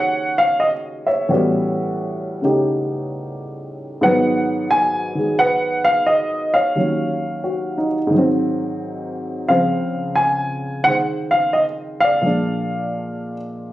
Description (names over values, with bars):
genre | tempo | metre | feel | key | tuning
solo jazz | 88 BPM | 4/4 | swing 68% on 8ths | Eb minor | A4 = 441 Hz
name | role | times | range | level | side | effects
warm upright piano | solo | 0.0-13.7 s | Db2 to Ab5 | -17 LUFS | equal | none
room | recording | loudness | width
moderate studio reverb, RT60 0.7 s | recorded on a phone in the room, studio reverb, compression | -17 LUFS | side -15 dB against mid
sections
0.0-13.7 A section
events
none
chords
0.0 Ebm9; 1.3 A13; 4.0 Abm7; 6.8 Ebm7; 8.1 Ab7; 9.5 Dbmaj7; 12.2 Bb7